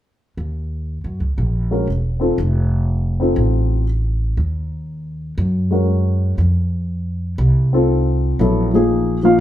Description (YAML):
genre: jazz piano trio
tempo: 120 BPM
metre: 4/4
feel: swing 69% on 8ths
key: unclear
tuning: A4 = 440 Hz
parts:
  - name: upright bass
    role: bass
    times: 0.4-9.3 s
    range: E1 to Gb2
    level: -18 LUFS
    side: equal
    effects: none
  - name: dark baby grand piano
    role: melody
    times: 1.7-9.4 s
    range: F3 to F5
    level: -17 LUFS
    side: left 2 dB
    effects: none
room: moderate large studio reverb, RT60 0.9 s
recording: band playing live in one room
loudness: -16 LUFS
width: side -12 dB against mid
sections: 0.4-8.4 A section; 8.4-9.4 B section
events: stop 7.9-8.4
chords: 0.4 Eb5; 2.4 F7; 4.4 Ebm7; 6.4 F7; 8.4 Bb7(no3)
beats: | 0.37 0.87 1.37 1.87 | 2.37 2.87 3.37 3.88 | 4.38 4.88 5.38 5.88 | 6.38 6.88 7.38 7.88 | 8.38 8.88 9.39